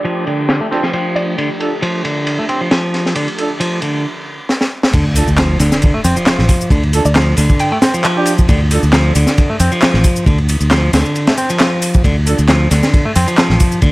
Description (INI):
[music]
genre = breakbeat, breaks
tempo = 135 BPM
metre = 4/4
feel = swing 53% on 16ths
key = D minor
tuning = A4 = 440 Hz
[part]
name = hollow square pluck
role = melody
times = 0.0-1.8, 7.1-7.8 s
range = D5 to G5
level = -23 LUFS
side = right 1 dB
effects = chorus, small speaker sound, digital delay
[part]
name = phased analog pad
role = sustained chords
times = 0.0-4.0 s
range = F3 to G4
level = -25 LUFS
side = equal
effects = phaser, chorus, sidechain pumping
[part]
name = clean electric guitar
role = riff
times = 0.0-13.9 s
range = D3 to C4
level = -18 LUFS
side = equal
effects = tube saturation, digital delay
[part]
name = garage drum kit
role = drums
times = 0.0-13.9 s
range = handclaps, hi-hat, shaker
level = -21 LUFS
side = equal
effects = low-pass filter on perc, low-pass filter on hats, low-pass filter on snare, low-pass filter on room
[part]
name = crunchy breakbeat drum kit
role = drums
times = 0.1-13.9 s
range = crash cymbal, kick drum, ride cymbal, snare drum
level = -15 LUFS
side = equal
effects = high-pass filter on kick, high-pass filter on cymbals, high-pass filter on snare, high-pass filter on room
[part]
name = mellow brass ensemble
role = stabs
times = 0.7-8.8, 12.3-12.4 s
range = D4 to A4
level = -21 LUFS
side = right 2 dB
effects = digital delay
[part]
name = fingered electric bass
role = bass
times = 4.9-13.9 s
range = A1 to F2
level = -13 LUFS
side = equal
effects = none
[part]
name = sub drop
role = sound effects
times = 4.9-6.7 s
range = none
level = -24 LUFS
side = equal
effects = none
[sound]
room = small room ambience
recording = vinyl crackle, low-pass filter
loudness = -11 LUFS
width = side -20 dB against mid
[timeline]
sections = 0.0-4.9 A section; 4.9-13.9 B section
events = drum fill 4.5-4.9; drop 4.9-13.9; impact 4.9-6.7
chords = 0.0 Dm